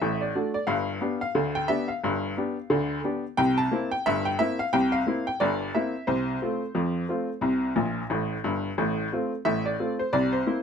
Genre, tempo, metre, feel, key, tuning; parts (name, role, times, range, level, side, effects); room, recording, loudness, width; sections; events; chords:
ragtime piano; 89 BPM; 2/4; swing 59% on 16ths; A4 = 437 Hz
bright upright piano; solo; 0.0-10.6 s; G1 to A5; -24 LUFS; equal
light reverb; close, detailed microphones; -24 LUFS; side -7 dB against mid
0.0-10.6 A section
upright piano fill 7.8-8.8
0.0 D; 0.7 G7; 3.4 C7; 6.1 F/C; 7.4 C5; 8.8 F/A; 10.1 C7